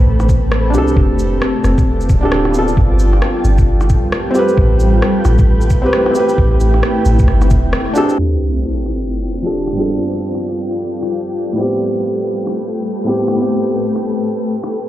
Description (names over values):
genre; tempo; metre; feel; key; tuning
future garage; 133 BPM; 4/4; swing 61% on 16ths; unclear; A4 = 438 Hz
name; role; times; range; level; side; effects
granular cloud pad; sustained chords; 0.0-14.9 s; G3 to A5; -19 LUFS; equal; built-in reverb, sidechain pumping
soft 808-style bass; bass; 0.0-7.7 s; D1 to C2; -14 LUFS; equal; tube saturation, sidechain pumping
electronic rim click and shaker; drums; 0.2-14.8 s; none; -23 LUFS; equal; none
electronic kick drum; drums; 0.3-7.6 s; none; -13 LUFS; equal; none
felt-muted upright piano; accompaniment; 0.7-14.9 s; G2 to B4; -18 LUFS; equal; sidechain pumping, low-pass filter, analog delay
sub drop; sound effects; 8.2-10.0 s; none; -19 LUFS; equal; none
room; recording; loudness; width
light reverb; played on a big sound system in a bare room, cassette tape, large studio reverb, low-pass filter; -12 LUFS; side -14 dB against mid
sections
0.0-8.2 A section; 8.2-14.9 B section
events
band accent 7.7; impact 8.2-10.0; filter sweep 8.2-14.9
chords
0.0 Am7; 1.0 F6; 2.8 G9; 4.6 Am7; 8.2 G9; 11.8 Am7